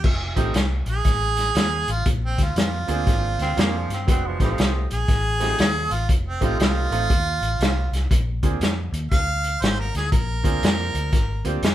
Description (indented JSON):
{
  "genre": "electric blues shuffle",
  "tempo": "119 BPM",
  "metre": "4/4",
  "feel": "swing 64% on 8ths",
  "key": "unclear",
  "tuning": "A4 = 438 Hz",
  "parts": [
    { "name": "warm harmonica", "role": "melody", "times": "0.0-11.6 s", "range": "C4 to F5", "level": "-25 LUFS", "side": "right 3 dB", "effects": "none" },
    { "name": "vintage muted fingered electric bass", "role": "bass", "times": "0.0-11.7 s", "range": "F1 to G2", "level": "-25 LUFS", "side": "left 1 dB", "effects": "none" },
    { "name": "vintage drum kit", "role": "drums", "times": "0.0-11.7 s", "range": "crash cymbal, hi-hat, kick drum, snare drum", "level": "-22 LUFS", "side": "equal", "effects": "none" },
    { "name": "bright upright piano", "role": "accompaniment", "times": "0.4-11.6 s", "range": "E3 to Ab4", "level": "-28 LUFS", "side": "right 4 dB", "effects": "none" },
    { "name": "growling tenor saxophone", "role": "second line", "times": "3.4-4.8 s", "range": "F3 to C4", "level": "-29 LUFS", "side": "right 1 dB", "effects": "none" }
  ],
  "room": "light reverb",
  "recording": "band playing live in one room",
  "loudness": "-19 LUFS",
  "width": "side -12 dB against mid",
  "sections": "0.0-11.7 A section",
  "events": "none",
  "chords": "0.0 F7; 2.1 Bb7; 4.1 F7; 8.1 Bb7"
}